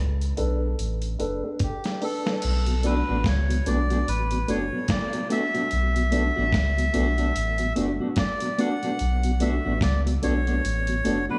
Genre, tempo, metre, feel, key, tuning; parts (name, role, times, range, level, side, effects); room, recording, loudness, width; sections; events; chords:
dub reggae; 73 BPM; 4/4; swing 60% on 16ths; B minor; A4 = 440 Hz
soft dub sub bass; bass; 0.0-11.3 s; F#1 to C#2; -27 LUFS; equal
dusty soul sampler-style drum kit; drums; 0.2-11.3 s; crash cymbal, hi-hat, kick drum, snare drum; -32 LUFS; equal
dark upright piano; stabs; 0.4-2.3 s; D4 to B4; -34 LUFS; equal; low-pass filter, dub echo
melodica; melody; 1.6-11.4 s; G4 to F#5; -31 LUFS; equal; low-pass filter, dub echo
mellow tonewheel organ; accompaniment; 2.7-11.4 s; B2 to D4; -34 LUFS; equal; chorus vibrato, stopped rotary speaker, dub echo
mellow electric guitar; accompaniment; 2.8-11.4 s; A3 to F#4; -31 LUFS; equal; harmonic tremolo, low-pass filter, dub echo
light reverb, digital ambience; small room ambience; -25 LUFS; mono
0.0-2.4 A section; 2.4-11.4 B section
break 0.0-2.4; filter sweep 0.0-2.4; drum fill 0.8-2.4
0.0 Bm7